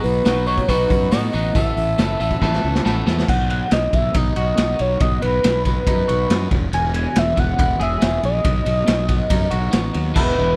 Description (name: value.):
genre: indie rock.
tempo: 139 BPM.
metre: 4/4.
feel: straight.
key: unclear.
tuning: A4 = 440 Hz.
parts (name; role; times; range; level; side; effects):
overdriven synth lead; melody; 0.0-10.6 s; B4 to G#5; -24 LUFS; equal; chorus, slapback echo.
biting overdriven guitar; riff; 0.0-10.6 s; E2 to A4; -28 LUFS; equal; none.
fuzz fingered electric bass; bass; 0.0-10.6 s; E1 to A2; -24 LUFS; equal; overdrive.
raw garage drum kit; drums; 0.0-10.3 s; crash cymbal, hi-hat, kick drum, ride cymbal, snare drum; -23 LUFS; equal; none.
room: little or no reverb.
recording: none.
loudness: -19 LUFS.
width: mono.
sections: 0.0-3.3 A section; 3.3-10.2 B section.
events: drum fill 2.4-3.3.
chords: 0.0 B; 1.6 Asus2; 3.3 B; 6.5 E; 8.4 B.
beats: 0.26 0.69 1.12 | 1.56 1.99 2.42 2.85 | 3.28 3.72 4.15 4.58 | 5.01 5.44 5.87 6.30 | 6.73 7.16 7.59 8.02 | 8.45 8.88 9.30 9.73 | 10.16.